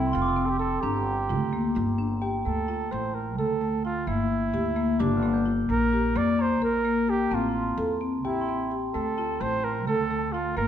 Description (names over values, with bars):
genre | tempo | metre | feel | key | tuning
contemporary instrumental, chamber music in an uneven meter | 259 BPM (eighths) | 7/8 | straight | unclear | A4 = 440 Hz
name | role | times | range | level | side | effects
warm flugelhorn | melody | 0.0-10.7 s | D4 to D5 | -30 LUFS | right 4 dB | none
marimba with medium mallets | arpeggios | 0.0-10.7 s | A3 to Bb4 | -27 LUFS | left 3 dB | none
upright bass | bass | 0.0-10.7 s | F1 to F2 | -31 LUFS | right 3 dB | none
glockenspiel with soft plastic mallets | texture | 0.0-9.7 s | G5 to G6 | -34 LUFS | right 1 dB | none
room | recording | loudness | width
wet recital hall reverb, RT60 1.4 s | none | -24 LUFS | side -9 dB against mid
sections
0.0-2.5 A section; 2.5-10.7 B section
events
none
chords
0.0 Fmaj7; 0.8 Gm7; 2.5 Dm; 4.1 Gm; 5.7 Bb5; 7.3 Am7; 8.9 Dm